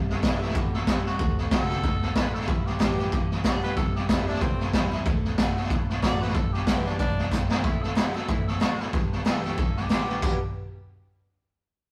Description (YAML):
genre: rockabilly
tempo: 186 BPM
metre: 4/4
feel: swing 58% on 8ths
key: G major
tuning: A4 = 440 Hz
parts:
  - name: picked steel-string acoustic guitar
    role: accompaniment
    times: 0.0-10.4 s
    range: G2 to G4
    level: -37 LUFS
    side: equal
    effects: none
  - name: electric guitar through a small old amp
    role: riff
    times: 0.0-10.4 s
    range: G2 to G4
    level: -38 LUFS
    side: equal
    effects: none
  - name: upright bass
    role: bass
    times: 0.0-10.4 s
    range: G1 to B2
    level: -38 LUFS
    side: equal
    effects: none
  - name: raspy tenor saxophone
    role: melody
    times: 0.1-10.4 s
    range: A3 to D5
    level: -37 LUFS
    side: equal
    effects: none
  - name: raw garage drum kit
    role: drums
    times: 0.1-10.3 s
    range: crash cymbal, hi-hat, kick drum, snare drum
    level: -27 LUFS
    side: equal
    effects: none
room: light reverb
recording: rough rehearsal-room recording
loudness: -26 LUFS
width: mono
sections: 0.0-7.6 A section; 7.6-10.2 B section; 10.2-11.5 C section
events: drum fill 7.3-7.6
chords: 0.0 C; 1.2 D7; 2.5 G; 3.8 C; 5.1 D7; 6.3 G; 7.6 D7; 8.9 G